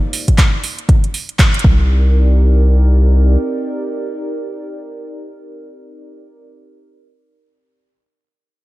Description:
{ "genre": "deep house", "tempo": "119 BPM", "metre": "4/4", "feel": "swing 59% on 16ths", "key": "C minor", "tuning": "A4 = 441 Hz", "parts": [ { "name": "house drum kit", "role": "drums", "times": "0.1-1.6 s", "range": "handclaps, hi-hat", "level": "-20 LUFS", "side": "right 1 dB", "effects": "none" }, { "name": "electronic kick drum", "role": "drums", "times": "0.3-1.8 s", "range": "none", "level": "-11 LUFS", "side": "equal", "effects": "overdrive" }, { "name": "hollow soft pad", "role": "sustained chords", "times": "1.6-6.4 s", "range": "C4 to D5", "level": "-24 LUFS", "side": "right 1 dB", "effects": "chorus, sidechain pumping" }, { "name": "round analog bass", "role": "bass", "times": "1.6-3.4 s", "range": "C2", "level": "-10 LUFS", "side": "equal", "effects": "sidechain pumping" } ], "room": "small room reverb", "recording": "none", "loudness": "-12 LUFS", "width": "side -18 dB against mid", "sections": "0.0-1.9 A section; 1.9-5.9 B section", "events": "drop 0.0-1.9; band accent 1.4", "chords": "0.0 N.C.; 1.6 Cm9" }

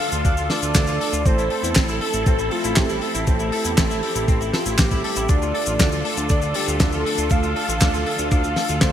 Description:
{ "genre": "italo disco", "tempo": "119 BPM", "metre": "4/4", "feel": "straight", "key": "D minor", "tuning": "A4 = 441 Hz", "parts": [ { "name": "soft octave-layered synth lead", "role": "melody", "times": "0.0-8.9 s", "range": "F4 to F5", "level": "-26 LUFS", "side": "left 1 dB", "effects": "chorus, ping-pong delay, shimmer reverb" }, { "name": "bright studio string section", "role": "sustained chords", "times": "0.0-8.9 s", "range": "D3 to A4", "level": "-29 LUFS", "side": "right 1 dB", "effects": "shimmer reverb" }, { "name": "direct-recorded clean electric guitar", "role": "arpeggios", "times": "0.0-8.9 s", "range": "C4 to A4", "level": "-30 LUFS", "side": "left 1 dB", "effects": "ensemble chorus, ping-pong delay, shimmer reverb" }, { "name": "mellow synth brass", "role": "stabs", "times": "0.0-8.9 s", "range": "A3 to A4", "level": "-29 LUFS", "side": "right 2 dB", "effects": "chorus, shimmer reverb" }, { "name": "fat analog bass", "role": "bass", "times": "0.1-8.9 s", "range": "A1 to E2", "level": "-26 LUFS", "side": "equal", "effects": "none" }, { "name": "damped 70s drum kit", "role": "drums", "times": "0.1-8.9 s", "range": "cabasa, handclaps, hi-hat, snare drum", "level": "-23 LUFS", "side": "left 1 dB", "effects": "small room reverb" }, { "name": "electronic kick drum", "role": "drums", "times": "0.2-8.9 s", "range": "none", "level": "-20 LUFS", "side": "equal", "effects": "small room reverb" } ], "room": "moderate lush hall reverb, RT60 1.9 s, studio ambience", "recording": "bright 1980s-style digital production", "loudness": "-18 LUFS", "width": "side -10 dB against mid", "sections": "0.0-8.9 A section", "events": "none", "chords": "0.0 Dm; 1.3 Am; 5.3 Dm" }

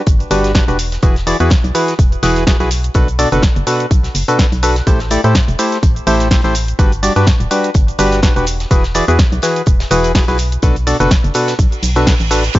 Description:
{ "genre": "piano house", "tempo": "125 BPM", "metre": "4/4", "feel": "swing 56% on 16ths", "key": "unclear", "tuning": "A4 = 440 Hz", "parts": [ { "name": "percussive organ stab", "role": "riff", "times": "0.0-12.6 s", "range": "B2 to D5", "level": "-16 LUFS", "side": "equal", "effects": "chorus, sidechain pumping, digital delay" }, { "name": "organ-like FM bass", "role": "bass", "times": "0.1-12.6 s", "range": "D1 to A2", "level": "-17 LUFS", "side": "equal", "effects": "sidechain pumping" }, { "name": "electronic kick drum", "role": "drums", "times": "0.1-12.6 s", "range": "none", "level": "-12 LUFS", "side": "equal", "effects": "none" }, { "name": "house drum kit", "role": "drums", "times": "0.1-12.6 s", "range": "hi-hat, shaker, snare drum", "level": "-20 LUFS", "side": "equal", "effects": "none" }, { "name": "warm soul drum kit", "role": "drums", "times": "0.1-12.6 s", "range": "hi-hat, snare drum", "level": "-30 LUFS", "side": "left 2 dB", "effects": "none" }, { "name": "reverse cymbal", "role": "sound effects", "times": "11.8-12.5 s", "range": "none", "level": "-23 LUFS", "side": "right 6 dB", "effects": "none" }, { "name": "analog string pad", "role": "sustained chords", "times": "12.5-12.6 s", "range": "none", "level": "barely audible", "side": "none", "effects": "none" } ], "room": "little or no reverb", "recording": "dark, warm production, nothing above 7.6 kHz", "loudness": "-11 LUFS", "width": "side -16 dB against mid", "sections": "0.0-12.6 A section", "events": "reverse cymbal 11.8-12.5", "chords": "0.0 Gmaj7; 0.8 Eadd9; 2.7 Bm7; 4.9 Am7; 6.8 Gmaj7; 8.5 Eadd9; 10.4 Bm7" }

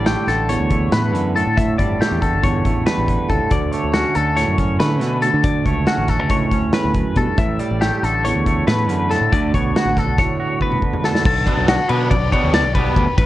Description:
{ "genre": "math rock and midwest emo", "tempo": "279 BPM (eighths)", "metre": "9/8", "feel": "straight", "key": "unclear", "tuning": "A4 = 440 Hz", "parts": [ { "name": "twangy electric guitar", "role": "accompaniment", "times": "0.0-13.2 s", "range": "D2 to F#4", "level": "-22 LUFS", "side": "right 5 dB", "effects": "none" }, { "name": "twelve-string electric guitar", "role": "arpeggios", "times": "0.0-13.3 s", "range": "F#4 to E5", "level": "-21 LUFS", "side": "left 4 dB", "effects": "none" }, { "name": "modern bright fingered electric bass", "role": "bass", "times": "0.0-13.3 s", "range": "G1 to D3", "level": "-21 LUFS", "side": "equal", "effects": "none" }, { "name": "loose indie drum kit", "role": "drums", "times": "0.1-13.3 s", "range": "crash cymbal, hi-hat, kick drum, ride cymbal, snare drum, toms", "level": "-20 LUFS", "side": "equal", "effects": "none" }, { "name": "raw garage guitar", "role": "riff", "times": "11.5-13.0 s", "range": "B2 to D4", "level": "-22 LUFS", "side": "right 2 dB", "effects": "overdrive" } ], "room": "light reverb, small room ambience", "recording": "worn, warbling old tape, cassette tape, warbly pitch drift", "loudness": "-15 LUFS", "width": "side -15 dB against mid", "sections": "0.0-11.3 A section; 11.3-13.3 B section", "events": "drum fill 10.6-11.3", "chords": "0.0 A7sus4; 9.3 D6; 11.3 Bm7; 12.1 G/B" }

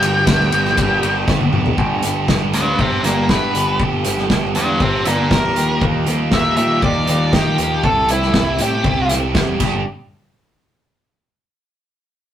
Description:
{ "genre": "indie rock", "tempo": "119 BPM", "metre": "4/4", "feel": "straight", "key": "G major", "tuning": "A4 = 441 Hz", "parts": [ { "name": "octave-fuzz lead guitar", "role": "melody", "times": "0.0-9.1 s", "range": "E4 to G5", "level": "-18 LUFS", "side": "left 1 dB", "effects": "distortion" }, { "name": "glockenspiel with soft plastic mallets", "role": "second line", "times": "0.0-1.2 s", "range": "none", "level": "barely audible", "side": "none", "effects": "none" }, { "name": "biting overdriven guitar", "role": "riff", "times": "0.0-9.8 s", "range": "G2 to G4", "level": "-21 LUFS", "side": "right 2 dB", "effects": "none" }, { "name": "clean electric guitar", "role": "riff", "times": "0.0-9.8 s", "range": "G2 to G4", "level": "-26 LUFS", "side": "left 2 dB", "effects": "none" }, { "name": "growling picked electric bass", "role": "bass", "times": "0.0-9.8 s", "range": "E1 to Eb3", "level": "-22 LUFS", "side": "equal", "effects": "overdrive" }, { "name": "loose indie drum kit", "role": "drums", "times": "0.0-9.7 s", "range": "crash cymbal, hi-hat, kick drum, ride cymbal, snare drum, toms", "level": "-19 LUFS", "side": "equal", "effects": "none" } ], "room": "moderate studio reverb, RT60 0.6 s", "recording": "rough rehearsal-room recording, tube saturation", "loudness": "-14 LUFS", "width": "side -10 dB against mid", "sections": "0.0-1.8 A section; 1.8-9.9 B section; 9.9-11.9 C section", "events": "drum fill 1.3-1.8; lead electric guitar solo 1.8-9.9", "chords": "0.0 G; 5.6 Ebadd9; 7.8 Cadd9; 9.6 G; 9.9 N.C." }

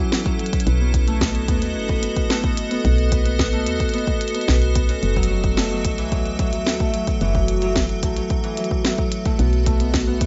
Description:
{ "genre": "IDM", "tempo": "110 BPM", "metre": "4/4", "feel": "straight", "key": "F# dorian", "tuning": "A4 = 439 Hz", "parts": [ { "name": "icy glass pad", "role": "sustained chords", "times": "0.0-10.3 s", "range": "F#3 to E5", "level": "-28 LUFS", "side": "equal", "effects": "chorus, built-in reverb, vintage 12-bit sampler grit" }, { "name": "Celtic harp", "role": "arpeggios", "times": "0.0-10.3 s", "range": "E3 to B4", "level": "-29 LUFS", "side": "equal", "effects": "digital delay" }, { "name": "glitchy drum kit", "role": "drums", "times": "0.1-10.3 s", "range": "hi-hat, snare drum", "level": "-28 LUFS", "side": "equal", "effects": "studio ambience" }, { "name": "electronic kick drum", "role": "drums", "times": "0.3-10.3 s", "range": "none", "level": "-26 LUFS", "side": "equal", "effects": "studio ambience" }, { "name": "woody FM bass", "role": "bass", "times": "0.7-10.3 s", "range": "F#1 to D#2", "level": "-24 LUFS", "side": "equal", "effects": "none" } ], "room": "little or no reverb", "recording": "rough home demo mix, nothing above 7.8 kHz", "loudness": "-20 LUFS", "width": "mono", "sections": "0.0-10.3 A section", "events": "none", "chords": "0.0 F#m7; 0.7 B7; 5.0 F#m7; 9.4 B7" }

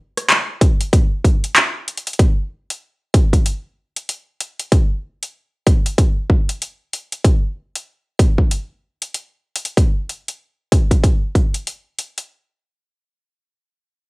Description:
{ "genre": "glitch hop", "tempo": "95 BPM", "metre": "4/4", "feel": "swing 60% on 16ths", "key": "none", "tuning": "none", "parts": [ { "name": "dubstep drum kit", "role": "drums", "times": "0.2-12.3 s", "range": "handclaps, hi-hat, rim click", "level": "-18 LUFS", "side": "equal", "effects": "small room ambience, cassette tape" }, { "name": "electronic kick drum", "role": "drums", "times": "0.6-11.5 s", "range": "none", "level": "-14 LUFS", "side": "equal", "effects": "small room ambience, cassette tape" } ], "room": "light reverb", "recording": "home recording on cassette", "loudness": "-16 LUFS", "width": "side -25 dB against mid", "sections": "0.0-12.3 A section", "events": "none", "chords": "none" }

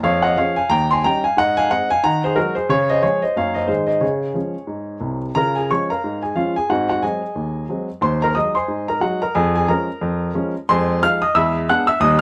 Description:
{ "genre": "jazz, stride piano", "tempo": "180 BPM", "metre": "4/4", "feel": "swing 58% on 8ths", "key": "Db major", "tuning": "A4 = 437 Hz", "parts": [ { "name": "warm upright piano", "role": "solo", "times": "0.0-12.2 s", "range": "C2 to Gb6", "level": "-19 LUFS", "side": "equal", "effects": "none" } ], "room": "moderate studio reverb, RT60 0.5 s", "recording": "none", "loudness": "-19 LUFS", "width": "mono", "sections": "0.0-5.4 A section; 5.4-12.2 B section", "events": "none", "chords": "0.0 Db/F; 0.7 Eb7; 1.4 Ab; 2.0 Ab5/Eb; 2.7 Db; 3.4 Gb6; 3.7 Ab; 4.0 Db; 6.7 Ab7; 8.0 Ab7/Eb; 9.3 Db/F; 10.7 Fm7; 11.3 E7" }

